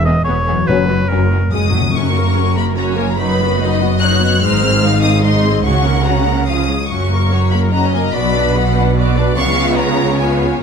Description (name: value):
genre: cinematic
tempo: 145 BPM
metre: 3/4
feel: straight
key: F# major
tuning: A4 = 440 Hz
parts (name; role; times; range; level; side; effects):
- clear oboe; second line; 0.0-1.5 s; A#4 to D#5; -20 LUFS; equal; none
- clear symphonic violin section; second line; 0.0-10.6 s; B3 to F#5; -23 LUFS; left 4 dB; none
- concert harp; arpeggios; 0.0-10.6 s; E2 to D#6; -21 LUFS; left 11 dB; none
- rich studio double bass section; bass; 0.0-10.6 s; E1 to C#2; -19 LUFS; right 3 dB; none
- rich symphonic cello section; bass; 0.0-10.6 s; E2 to C#3; -18 LUFS; right 3 dB; none
- warm symphonic violin section; melody; 0.1-10.6 s; F#4 to F#6; -21 LUFS; left 3 dB; none
- rich symphonic viola section; accompaniment; 0.1-10.6 s; E#3 to B4; -20 LUFS; right 1 dB; none
- mellow French horn section; sustained chords; 0.7-1.3 s; F#3 to C#4; -21 LUFS; left 8 dB; none
- timpani; percussion; 0.7-2.5 s; F#2; -21 LUFS; left 2 dB; none
room: light reverb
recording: none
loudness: -12 LUFS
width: side -6 dB against mid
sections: 0.0-2.0 A section; 2.0-10.6 B section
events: timpani fill 1.1-2.0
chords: 0.0 E; 0.7 F#sus4; 1.1 F#; 3.2 B/F#; 4.4 G#; 5.7 F#/C#; 6.5 C#; 6.9 F#; 8.1 Bm; 9.4 C#7